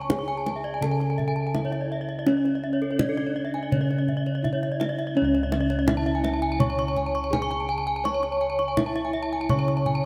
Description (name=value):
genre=Balinese gamelan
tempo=83 BPM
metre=4/4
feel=straight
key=C# pelog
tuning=A4 = 440 Hz
part: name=gamelan-type bronze metallophone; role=melody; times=0.0-10.1 s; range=C#4 to C#5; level=-32 LUFS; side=equal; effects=diffuse ambient delay
part: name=gamelan-type bronze metallophone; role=arpeggios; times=0.0-10.0 s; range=A4 to C#6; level=-36 LUFS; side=equal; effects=none
part: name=gamelan-type bossed gongs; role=bass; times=0.0-10.1 s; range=C#2 to C#5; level=-29 LUFS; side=equal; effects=none
part: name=gamelan-type bronze metallophone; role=arpeggios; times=0.1-9.9 s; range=A4 to C#6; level=-33 LUFS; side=equal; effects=none
part: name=kendang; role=percussion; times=0.1-10.0 s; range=none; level=-32 LUFS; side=equal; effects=none
room=wet lush hall reverb, RT60 2.7 s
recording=dreamy mix soaked in reverb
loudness=-25 LUFS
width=mono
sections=0.0-10.1 A section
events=none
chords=none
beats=0.10 0.82 1.54 | 2.27 2.99 3.71 4.43 | 5.16 5.88 6.60 7.33 | 8.05 8.77 9.49